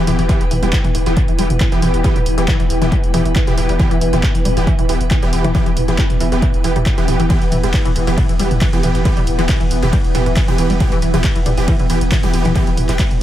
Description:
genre	driving peak-time techno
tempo	137 BPM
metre	4/4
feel	straight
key	E minor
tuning	A4 = 441 Hz
part	tight sequenced synth	riff	0.0-13.0 s	E3 to G3	-22 LUFS	left 1 dB	chorus, tube saturation, sidechain pumping, dub echo
part	rave stab	stabs	0.0-13.0 s	E3 to G4	-22 LUFS	right 2 dB	chorus, built-in reverb, sidechain pumping, dub echo
part	saturated sub bass	bass	0.0-13.2 s	E1	-20 LUFS	equal	overdrive, sidechain pumping, low-pass filter
part	deep dark ambient pad	drone	0.0-13.2 s	E3 to B3	-25 LUFS	equal	chorus, built-in reverb, sidechain pumping
part	granular cloud pad	texture	0.0-13.2 s	E4 to G5	-26 LUFS	equal	built-in reverb, sidechain pumping
part	punchy analog drum machine	drums	0.1-13.2 s	handclaps, hi-hat, ride cymbal, toms	-23 LUFS	right 1 dB	sidechain pumping on hats, sidechain pumping on toms, sidechain pumping on cymbals, analog delay
part	electronic kick drum	drums	0.3-13.1 s	none	-17 LUFS	equal	none
room	little or no reverb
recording	echo-heavy mix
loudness	-13 LUFS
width	side -12 dB against mid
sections	0.0-13.2 A section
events	break 0.0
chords	0.0 Em

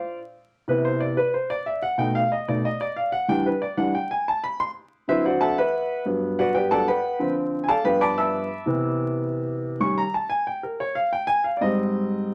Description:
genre	jazz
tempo	184 BPM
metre	4/4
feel	straight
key	G major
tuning	A4 = 436 Hz
part	warm upright piano	solo	0.0-12.3 s	G2 to E6	-24 LUFS	equal	none
room	moderate club reverb, RT60 0.6 s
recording	vinyl crackle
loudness	-24 LUFS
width	mono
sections	0.0-8.5 A section; 8.5-12.3 A section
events	upright piano solo 0.0-12.3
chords	0.0 Bbadd9 (rootless); 0.7 Cmaj7; 2.0 B7alt; 3.3 Em7; 4.6 D13; 5.9 Gmaj9; 7.2 Dm7; 7.8 G13; 8.5 C; 9.8 Eb7; 11.1 Abmaj7

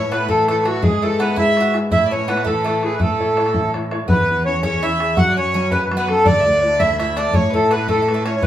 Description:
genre	celtic folk, Celtic jig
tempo	111 BPM (dotted quarters)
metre	6/8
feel	straight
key	A major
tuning	A4 = 440 Hz
part	accordion	melody	0.0-8.5 s	F#4 to F#5	-18 LUFS	equal	none
part	Irish bouzouki	second line	0.0-8.5 s	F#3 to F#4	-27 LUFS	right 2 dB	none
part	clear fiddle	second line	0.0-8.5 s	F#4 to F#5	-27 LUFS	left 3 dB	none
part	clear upright piano	accompaniment	0.0-8.5 s	D3 to C#5	-25 LUFS	equal	none
part	dark cello	bass	0.0-8.5 s	D2 to A2	-25 LUFS	left 1 dB	none
part	bodhran	percussion	0.1-8.5 s	none	-23 LUFS	left 1 dB	none
room	wet studio reverb, RT60 0.6 s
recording	band playing live in one room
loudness	-15 LUFS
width	side -11 dB against mid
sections	0.0-4.1 A section; 4.1-8.5 B section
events	none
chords	0.0 Asus2; 0.8 E/G#; 1.9 Asus2; 3.0 A; 4.1 E6; 5.2 F#5; 6.3 Dsus2; 7.3 A5

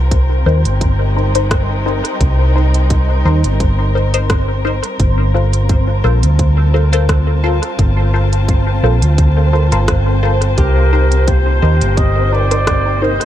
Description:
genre	ambient dub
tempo	86 BPM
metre	4/4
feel	swing 54% on 16ths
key	unclear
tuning	A4 = 440 Hz
part	muted studio string section	sustained chords	0.0-13.2 s	C3 to A5	-24 LUFS	left 2 dB	none
part	hollow-body short-scale fingered electric bass	bass	0.0-13.2 s	G1 to Eb2	-13 LUFS	equal	tube saturation
part	wind-like tuned noise texture	texture	0.0-13.2 s	C4 to C5	-24 LUFS	equal	built-in reverb
part	electronic kick drum	drums	0.1-12.8 s	none	-16 LUFS	equal	none
part	organic electronic drum kit	drums	0.1-13.2 s	hi-hat, rim click	-24 LUFS	right 1 dB	dub echo
part	filtered dub chord stab	stabs	0.5-13.2 s	Eb4 to C5	-21 LUFS	left 2 dB	phaser, dub echo
part	trumpet with bucket mute	melody	10.6-13.2 s	Bb4 to Eb5	-19 LUFS	right 1 dB	analog delay
part	concert harp	arpeggios	10.6-13.2 s	G4	-24 LUFS	left 1 dB	vintage 12-bit sampler grit, analog delay
room	small room ambience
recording	echo-heavy mix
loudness	-11 LUFS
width	side -12 dB against mid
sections	0.0-13.2 A section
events	none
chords	0.0 Cm7; 5.0 Gm11; 10.6 Cm7

